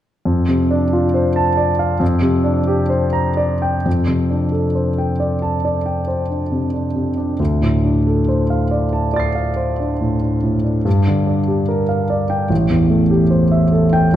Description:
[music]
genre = classical, impressionist solo piano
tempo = 60-75 BPM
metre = 4/4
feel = rubato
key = F major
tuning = A4 = 442 Hz
[part]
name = clear concert grand piano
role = solo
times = 0.3-14.2 s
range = A1 to C7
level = -15 LUFS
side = equal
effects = none
[sound]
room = wet scoring stage reverb, RT60 1.8 s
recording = dark, warm production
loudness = -15 LUFS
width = side -12 dB against mid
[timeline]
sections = 0.3-3.9 A section; 3.9-14.2 B section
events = none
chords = 0.3 F6; 2.0 C9sus4/F; 3.9 F69; 7.4 Dm7; 10.9 Gm7; 12.5 Am7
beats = | 0.26 1.14 2.01 2.90 | 3.86 4.75 5.63 6.51 | 7.39 8.28 9.13 10.01 | 10.86 11.69 12.50 13.31 | 14.14

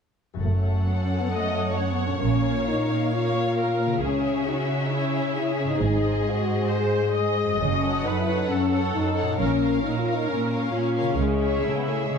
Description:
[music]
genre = cinematic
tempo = 134 BPM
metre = 4/4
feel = straight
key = unclear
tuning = A4 = 440 Hz
[part]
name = concert harp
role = arpeggios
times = 0.3-12.2 s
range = F#2 to A#4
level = -33 LUFS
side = left 8 dB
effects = none
[part]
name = warm symphonic violin section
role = melody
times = 0.4-12.2 s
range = D#5 to F#5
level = -35 LUFS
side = left 4 dB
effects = none
[part]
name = warm symphonic violin section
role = second line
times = 0.4-12.2 s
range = G#4 to C#5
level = -32 LUFS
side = left 4 dB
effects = none
[part]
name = warm French horn section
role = sustained chords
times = 0.4-12.2 s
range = G#3 to G#4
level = -26 LUFS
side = left 4 dB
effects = none
[part]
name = clear symphonic cello section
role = bass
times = 0.4-12.2 s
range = F#2 to C#3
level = -28 LUFS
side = right 4 dB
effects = none
[part]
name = rich symphonic double bass section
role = bass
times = 0.4-11.5 s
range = F#1 to C#2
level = -27 LUFS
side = right 4 dB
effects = none
[part]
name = rich symphonic viola section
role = accompaniment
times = 1.3-12.2 s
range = C#4 to D#5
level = -30 LUFS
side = right 1 dB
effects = none
[sound]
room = moderate scoring stage reverb, RT60 1.8 s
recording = dark, warm production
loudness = -22 LUFS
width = side -6 dB against mid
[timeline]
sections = 0.4-12.2 A section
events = none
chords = 0.4 F#m; 2.2 A#m; 4.0 C#m; 5.8 G#; 7.6 F#m; 9.4 A#m; 11.2 C#m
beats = | 0.43 0.88 1.33 1.78 | 2.24 2.68 3.13 3.58 | 4.03 4.48 4.92 5.37 | 5.81 6.26 6.70 7.15 | 7.60 8.05 8.49 8.94 | 9.39 9.83 10.28 10.73 | 11.18 11.63 12.08

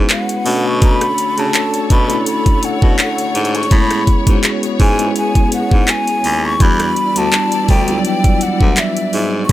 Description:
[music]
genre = contemporary R&B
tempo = 83 BPM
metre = 4/4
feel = swing 54% on 16ths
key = unclear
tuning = A4 = 440 Hz
[part]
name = tine electric piano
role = accompaniment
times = 0.0-9.5 s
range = F#3 to F#4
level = -19 LUFS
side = left 1 dB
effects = medium stereo tremolo
[part]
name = warm studio string section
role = sustained chords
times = 0.0-9.5 s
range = D3 to D5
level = -24 LUFS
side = left 1 dB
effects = none
[part]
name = raspy baritone saxophone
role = bass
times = 0.0-9.5 s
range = D2 to C#3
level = -19 LUFS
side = equal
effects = none
[part]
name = breathy mellow jazz flute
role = melody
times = 0.1-9.5 s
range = E5 to C#6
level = -19 LUFS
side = equal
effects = digital delay
[part]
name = smooth R&B drum kit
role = drums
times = 0.1-9.5 s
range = handclaps, hi-hat, kick drum, rim click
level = -14 LUFS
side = equal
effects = none
[sound]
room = little or no reverb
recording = none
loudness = -12 LUFS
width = side -14 dB against mid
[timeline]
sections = 0.0-9.5 A section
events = none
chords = 0.5 Bm9; 3.7 Amaj9 (rootless); 6.6 Em9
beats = 0.10 | 0.82 1.54 2.27 2.99 | 3.71 4.43 5.16 5.88 | 6.60 7.33 8.05 8.77 | 9.49

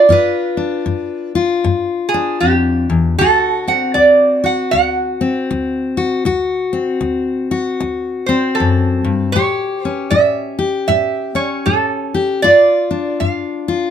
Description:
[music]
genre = acoustic country blues, solo or duo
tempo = 78 BPM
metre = 4/4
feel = swing 61% on 8ths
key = D mixolydian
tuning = A4 = 439 Hz
[part]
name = lap resonator guitar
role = melody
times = 0.0-13.9 s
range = G4 to F#5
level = -14 LUFS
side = right 3 dB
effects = none
[part]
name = fingerpicked steel-string acoustic guitar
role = accompaniment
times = 0.0-13.9 s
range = D2 to G4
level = -17 LUFS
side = left 4 dB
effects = none
[sound]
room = little or no reverb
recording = close, detailed microphones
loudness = -13 LUFS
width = side -8 dB against mid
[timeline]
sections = 0.0-13.9 A section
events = none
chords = 0.0 G7; 3.2 D7; 9.4 A7; 12.4 G5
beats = | 0.09 0.86 1.64 2.41 | 3.18 3.95 4.72 5.50 | 6.27 7.04 7.81 8.58 | 9.35 10.12 10.89 11.66 | 12.44 13.21

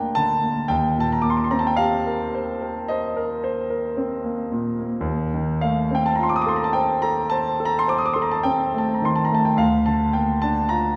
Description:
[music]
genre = classical, romantic nocturne for solo piano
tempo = 54 BPM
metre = 4/4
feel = rubato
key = unclear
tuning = A4 = 441 Hz
[part]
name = warm grand piano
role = solo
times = 0.0-11.0 s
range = D2 to Eb6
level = -22 LUFS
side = equal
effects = none
[sound]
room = wet recital hall reverb, RT60 1.3 s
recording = heard from further back in the room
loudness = -22 LUFS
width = mono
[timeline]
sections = 0.0-11.0 A section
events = none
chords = 0.0 Bb/D; 0.7 Cm7/Eb; 9.6 Bb/D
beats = | 0.69 1.79 2.90 3.98 | 5.07 6.19 7.31 8.45 | 9.59 10.70

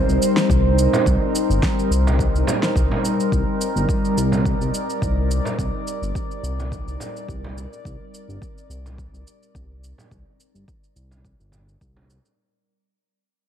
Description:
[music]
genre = organic downtempo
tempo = 106 BPM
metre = 4/4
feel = swing 54% on 16ths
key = C minor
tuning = A4 = 440 Hz
[part]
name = warbly tape-like pad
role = sustained chords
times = 0.0-12.4 s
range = G3 to D5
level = -22 LUFS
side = equal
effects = chorus, built-in reverb, phaser, sidechain pumping, shimmer reverb
[part]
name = smooth synth bass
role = bass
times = 0.0-12.2 s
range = G1 to C2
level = -22 LUFS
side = equal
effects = sidechain pumping
[part]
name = electronic cabasa and snare drum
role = drums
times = 0.1-12.4 s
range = none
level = -27 LUFS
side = equal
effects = overdrive, small room ambience
[part]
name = electronic kick drum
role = drums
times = 0.5-11.9 s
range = none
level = -24 LUFS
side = equal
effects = overdrive, small room ambience
[part]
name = frame drum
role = percussion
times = 0.9-12.1 s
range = none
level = -28 LUFS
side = right 2 dB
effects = none
[sound]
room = moderate echo chamber reverb, RT60 1.8 s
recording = dark, warm production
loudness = -18 LUFS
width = side -9 dB against mid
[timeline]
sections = 0.0-12.4 A section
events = fade-out 0.0-12.4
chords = 0.0 Cm7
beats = 0.49 | 1.06 1.62 2.19 2.76 | 3.32 3.89 4.45 5.02 | 5.59 6.15 6.72 7.28 | 7.85 8.42 8.98 9.55 | 10.11 10.68 11.25 11.81

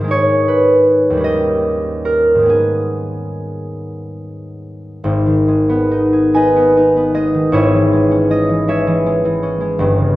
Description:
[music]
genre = classical, solo harp piece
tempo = 45-55 BPM (dotted quarters)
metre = 6/8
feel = rubato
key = G# minor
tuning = A4 = 440 Hz
[part]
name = concert harp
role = solo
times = 0.0-10.2 s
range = G1 to G#5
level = -12 LUFS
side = equal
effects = none
[sound]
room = moderate recital hall reverb, RT60 1.4 s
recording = none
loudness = -12 LUFS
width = side -16 dB against mid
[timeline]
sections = 0.0-5.1 A section; 5.1-10.2 B section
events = none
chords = 0.1 G#m; 1.2 D#7; 2.5 G#m; 7.5 C#m/G#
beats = | 0.11 1.24 | 2.49 3.79 | 5.06 6.35 | 7.54 8.66 | 9.80

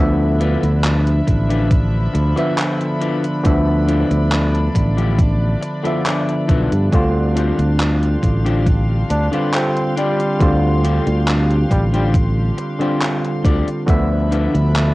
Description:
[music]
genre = vaporwave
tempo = 69 BPM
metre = 4/4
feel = straight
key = D dorian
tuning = A4 = 440 Hz
[part]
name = bell-like tine electric piano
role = accompaniment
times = 0.0-14.9 s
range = D3 to E5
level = -20 LUFS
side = equal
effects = wide subtle chorus, vintage 12-bit sampler grit, cassette tape, tape echo, plate reverb
[part]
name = rich chamber string section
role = sustained chords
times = 0.0-14.9 s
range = F3 to C6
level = -29 LUFS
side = equal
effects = vintage 12-bit sampler grit, cassette tape, plate reverb
[part]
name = modern bright fingered electric bass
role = bass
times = 0.0-14.9 s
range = A1 to G2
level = -17 LUFS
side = equal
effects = tube saturation
[part]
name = electric guitar at the edge of break-up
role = riff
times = 0.4-14.5 s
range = D4 to A5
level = -26 LUFS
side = left 5 dB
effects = wide subtle chorus, vintage 12-bit sampler grit, cassette tape, tape echo
[part]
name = gated 80s digital drum machine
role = drums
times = 0.4-14.9 s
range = handclaps, hi-hat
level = -24 LUFS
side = equal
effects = gated reverb, overdrive, cassette tape
[part]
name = electronic kick drum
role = drums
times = 1.3-14.1 s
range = none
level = -17 LUFS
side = equal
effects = overdrive, cassette tape
[part]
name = mellow flugelhorn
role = melody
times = 9.1-12.1 s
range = G3 to D4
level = -24 LUFS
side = equal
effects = cassette tape, tape echo, plate reverb
[sound]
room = light reverb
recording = home recording on cassette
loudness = -14 LUFS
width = side -19 dB against mid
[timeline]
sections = 0.0-14.9 A section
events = clean electric guitar fill 5.6-6.9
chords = 0.0 Dm69; 6.9 G7sus4; 13.9 Dm69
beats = 0.84 1.71 2.58 | 3.45 4.32 5.19 6.06 | 6.93 7.80 8.67 9.54 | 10.41 11.28 12.14 13.02 | 13.88 14.75

